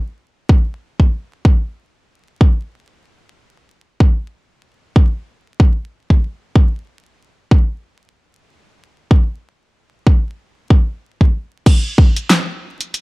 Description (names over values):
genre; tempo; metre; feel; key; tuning
glitch hop; 94 BPM; 4/4; swing 58% on 16ths; none; none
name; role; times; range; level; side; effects
electronic kick drum; drums; 0.5-12.1 s; none; -10 LUFS; equal; none
pop drum kit; drums; 11.7-13.0 s; crash cymbal, hi-hat, snare drum; -17 LUFS; equal; none
room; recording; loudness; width
little or no reverb; vinyl crackle; -13 LUFS; side -24 dB against mid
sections
0.0-11.7 A section; 11.7-13.0 B section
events
drop 11.7-13.0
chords
none